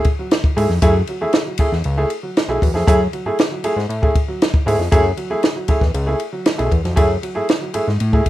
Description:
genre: funk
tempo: 117 BPM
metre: 4/4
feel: straight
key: unclear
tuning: A4 = 440 Hz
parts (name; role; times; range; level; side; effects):
- warm upright piano; stabs; 0.0-8.2 s; F#3 to G#4; -20 LUFS; right 1 dB; slapback echo
- compact cocktail drum kit; drums; 0.0-8.3 s; hi-hat, kick drum, ride cymbal, snare drum; -17 LUFS; equal; none
- fat analog bass; bass; 0.6-8.2 s; B1 to A2; -19 LUFS; equal; none
room: light reverb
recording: rough home demo mix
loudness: -15 LUFS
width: side -14 dB against mid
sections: 0.0-8.3 A section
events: none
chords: 0.0 F#m9

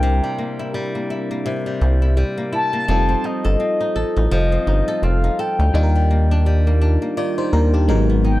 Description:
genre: contemporary R&B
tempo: 84 BPM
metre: 4/4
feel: swing 58% on 16ths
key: unclear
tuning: A4 = 439 Hz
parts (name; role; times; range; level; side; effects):
- mellow horn-like synth lead; melody; 0.0-8.4 s; Eb5 to A5; -23 LUFS; left 2 dB; chorus, analog delay
- FM electric piano; accompaniment; 0.0-8.4 s; Gb3 to D5; -24 LUFS; equal; chorus, phaser
- flamenco guitar; arpeggios; 0.0-8.4 s; Ab2 to A4; -25 LUFS; left 1 dB; none
- rubbery square bass; bass; 0.0-8.4 s; F1 to Eb2; -16 LUFS; equal; none
room: little or no reverb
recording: dry, gritty hardware recording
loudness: -16 LUFS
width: side -16 dB against mid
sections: 0.0-8.4 A section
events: none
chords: 0.0 C7; 2.9 F7; 5.7 Ebmaj7; 7.9 Abm7

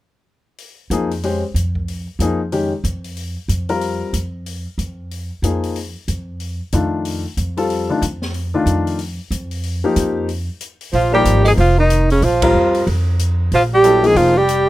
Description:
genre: modal jazz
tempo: 186 BPM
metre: 4/4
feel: swing 62% on 8ths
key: unclear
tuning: A4 = 440 Hz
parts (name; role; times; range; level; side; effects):
- open jazz drum kit; drums; 0.6-14.6 s; hi-hat, kick drum, ride cymbal, snare drum; -30 LUFS; left 1 dB; none
- warm grand piano; accompaniment; 0.9-14.3 s; Eb3 to C5; -19 LUFS; left 3 dB; none
- upright bass; bass; 0.9-14.7 s; F1 to F2; -20 LUFS; equal; none
- breathy alto saxophone; melody; 10.9-14.7 s; Db4 to Ab4; -15 LUFS; left 1 dB; none
- breathy tenor saxophone; second line; 10.9-14.7 s; Db3 to Ab3; -17 LUFS; right 5 dB; none
room: light reverb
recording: rough home demo mix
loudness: -15 LUFS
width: side -16 dB against mid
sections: 0.6-10.9 A section; 10.9-14.7 B section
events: break 10.3-10.9; band accent 12.4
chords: 0.6 Bb7(no3); 5.8 Cmadd9 (rootless); 10.9 Bb7(no3)

